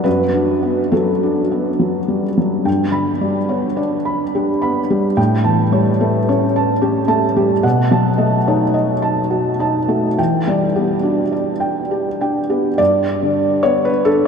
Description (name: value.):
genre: neoclassical minimalist piano.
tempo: 71 BPM.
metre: 3/4.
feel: uneven beats, rubato.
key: G lydian.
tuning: A4 = 441 Hz.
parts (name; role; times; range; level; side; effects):
felt-muted upright piano; solo; 0.0-14.3 s; F#2 to B5; -14 LUFS; equal; none.
room: wet huge ambient reverb, RT60 7.5 s.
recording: in a vast, echoing space.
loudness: -14 LUFS.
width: side -6 dB against mid.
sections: 0.0-2.7 A section; 2.7-12.8 B section; 12.8-14.3 C section.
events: none.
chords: 0.0 Bm7/F#; 2.7 G; 5.2 A7; 7.6 B7; 10.2 Em7; 12.8 G.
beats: | 0.06 0.93 1.81 | 2.67 3.50 4.34 | 5.17 6.01 6.82 | 7.64 8.47 9.31 | 10.18 11.05 11.92 | 12.79 13.63.